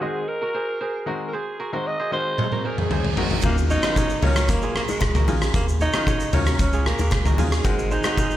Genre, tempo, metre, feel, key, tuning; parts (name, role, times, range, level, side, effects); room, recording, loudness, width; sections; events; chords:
afrobeats; 114 BPM; 4/4; straight; Eb dorian; A4 = 439 Hz
growling alto saxophone; melody; 0.0-8.4 s; Ab3 to Eb5; -27 LUFS; equal; low-pass filter
clear grand piano; accompaniment; 0.0-8.2 s; Eb3 to Gb4; -30 LUFS; left 3 dB; low-pass filter
kora; riff; 0.0-8.4 s; F4 to Eb5; -30 LUFS; right 4 dB; low-pass filter, tape echo
oversized low-tuned drum kit; drums; 2.4-8.4 s; hi-hat, kick drum, rim click, shaker, toms; -22 LUFS; equal; vintage 12-bit sampler grit
reverse cymbal and downlifter; sound effects; 2.7-7.6 s; -34 LUFS; right 2 dB
round analog bass; bass; 3.4-8.0 s; Ab1 to Eb2; -22 LUFS; equal
congas and bongos; percussion; 3.4-8.3 s; -34 LUFS; left 7 dB
light reverb, studio reverb; -20 LUFS; side -13 dB against mid
0.0-3.4 A section; 3.4-8.4 B section
drum fill 2.4-3.4; reverse cymbal 2.7-3.4
0.0 Ab7; 3.4 Ebm9; 7.6 Ab7